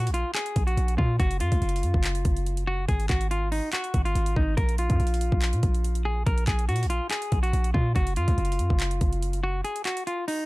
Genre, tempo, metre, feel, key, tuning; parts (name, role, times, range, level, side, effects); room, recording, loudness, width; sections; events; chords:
hip hop, trap; 142 BPM; 4/4; half-time; A4 = 440 Hz
semi-hollow electric guitar; melody; 0.0-10.4 s; Eb4 to Bb4; -30 LUFS; equal; digital delay
hard-hitting 808-style bass; bass; 0.0-9.6 s; Gb1 to Bb2; -25 LUFS; equal
trap drum kit; drums; 0.0-10.4 s; handclaps, hi-hat, kick drum; -27 LUFS; equal
digital ambience; dark, warm production; -23 LUFS; side -21 dB against mid
0.0-10.5 A section
break 9.6-10.5
0.0 Bb5; 1.2 Gb5; 2.9 Fm7/Ab; 4.6 Bb5; 8.0 Gb5; 9.6 N.C.